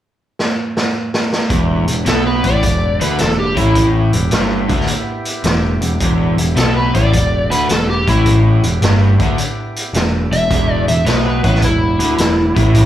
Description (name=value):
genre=blues rock power trio and southern rock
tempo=107 BPM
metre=4/4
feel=swing 67% on 8ths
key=E minor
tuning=A4 = 441 Hz
part: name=raw garage drum kit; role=drums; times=0.4-12.9 s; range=hi-hat, kick drum, snare drum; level=-18 LUFS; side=equal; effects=none
part: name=overdriven tonewheel organ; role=sustained chords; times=1.5-12.9 s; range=B3 to B4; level=-29 LUFS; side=right 3 dB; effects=none
part: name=overdriven semi-hollow guitar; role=riff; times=1.5-12.9 s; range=E2 to D3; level=-18 LUFS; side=equal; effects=spring reverb, slapback echo
part: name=growling picked electric bass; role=bass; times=1.5-12.9 s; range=E1 to D2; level=-16 LUFS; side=equal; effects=overdrive
part: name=overdriven slide guitar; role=melody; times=2.1-12.9 s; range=E4 to E5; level=-18 LUFS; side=left 1 dB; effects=none
room=light reverb, studio reverb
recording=live gig heard through the venue's PA, club ambience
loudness=-12 LUFS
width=side -12 dB against mid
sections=0.0-1.5 A section; 1.5-12.9 B section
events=drum fill 0.4-1.5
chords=0.0 N.C.; 1.5 Em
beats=0.37 0.94 | 1.50 2.06 2.63 3.19 | 3.75 4.32 4.88 5.44 | 6.01 6.57 7.13 7.70 | 8.26 8.82 9.38 9.94 | 10.50 11.06 11.62 12.19 | 12.75